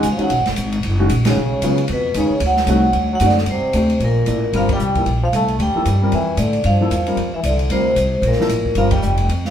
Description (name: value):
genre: modal jazz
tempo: 227 BPM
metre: 4/4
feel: swing 59% on 8ths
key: G# dorian, G dorian from 3.5 s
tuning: A4 = 440 Hz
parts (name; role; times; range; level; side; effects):
- vibraphone with medium hard mallets; melody; 0.0-9.5 s; Bb4 to A5; -21 LUFS; right 1 dB; plate reverb
- clear trombone; second line; 0.0-9.5 s; Bb2 to A3; -26 LUFS; left 2 dB; none
- warm baby grand piano; accompaniment; 0.0-8.9 s; C#3 to D5; -21 LUFS; left 1 dB; none
- upright bass; bass; 0.0-9.5 s; F1 to A2; -19 LUFS; equal; none
- open jazz drum kit; drums; 0.0-9.5 s; hi-hat, kick drum, ride cymbal, snare drum; -27 LUFS; equal; none
room: wet studio reverb, RT60 0.9 s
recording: heard from further back in the room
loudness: -15 LUFS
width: side -9 dB against mid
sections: 0.0-3.5 A section; 3.5-9.5 B section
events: band accent 1.2, 4.7, 8.9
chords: 0.0 G#m11; 2.4 D7b9; 3.5 Gm9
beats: 0.04 | 0.31 0.57 0.83 1.10 | 1.36 1.63 1.89 2.16 | 2.42 2.69 2.95 3.22 | 3.48 3.75 4.01 4.27 | 4.54 4.80 5.07 5.33 | 5.60 5.86 6.13 6.39 | 6.66 6.92 7.18 7.45 | 7.71 7.98 8.24 8.51 | 8.77 9.03 9.30